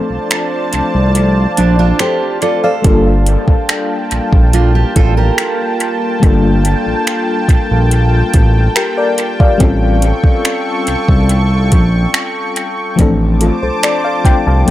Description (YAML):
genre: contemporary R&B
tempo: 71 BPM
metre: 4/4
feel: straight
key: G minor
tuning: A4 = 440 Hz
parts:
  - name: FM electric piano with tremolo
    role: accompaniment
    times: 0.0-14.7 s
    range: F3 to A5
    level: -17 LUFS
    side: left 3 dB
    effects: dub echo
  - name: lush unison pad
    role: sustained chords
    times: 0.0-14.7 s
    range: A3 to Eb6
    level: -19 LUFS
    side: right 1 dB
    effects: chorus
  - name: smooth gliding synth bass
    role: bass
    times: 0.1-14.7 s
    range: G1 to C2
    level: -12 LUFS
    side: equal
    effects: none
  - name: smooth R&B drum kit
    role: drums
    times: 0.3-14.7 s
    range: finger snaps, hi-hat, kick drum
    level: -13 LUFS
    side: equal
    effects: dub echo
  - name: fingerpicked steel-string acoustic guitar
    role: arpeggios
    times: 1.6-6.2 s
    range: D4 to C5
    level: -20 LUFS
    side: right 6 dB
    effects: dub echo
room: light reverb, digital ambience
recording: echo-heavy mix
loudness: -10 LUFS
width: side -14 dB against mid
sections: 0.0-14.7 A section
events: break 0.0-2.8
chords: 0.0 Dm7; 2.8 Gm9; 9.6 A7alt; 13.0 Dm7/A